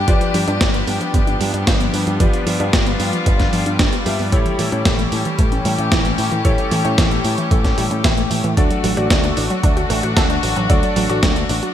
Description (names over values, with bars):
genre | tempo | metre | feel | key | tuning
italo disco | 113 BPM | 4/4 | straight | G major | A4 = 440 Hz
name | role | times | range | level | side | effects
rich chamber string section | sustained chords | 0.0-11.7 s | E3 to G4 | -22 LUFS | left 2 dB | none
warbly dusty pluck | arpeggios | 0.0-11.7 s | E3 to A4 | -24 LUFS | right 2 dB | chorus, cassette tape, ping-pong delay
warm electric grand piano | stabs | 0.0-11.7 s | D4 to E5 | -25 LUFS | left 2 dB | analog chorus, low-pass filter, ping-pong delay
picked electric bass with an envelope filter | bass | 0.0-11.6 s | G1 to A2 | -22 LUFS | equal | none
dusty soul sampler-style drum kit | drums | 0.1-11.7 s | hi-hat, snare drum | -22 LUFS | equal | overdrive, studio reverb, gated reverb
electronic kick drum | drums | 0.1-11.3 s | none | -18 LUFS | equal | overdrive, studio reverb
room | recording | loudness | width
light reverb | bright 1980s-style digital production | -15 LUFS | side -10 dB against mid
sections
0.0-11.7 A section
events
none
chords
0.1 G7; 4.3 A7; 8.6 D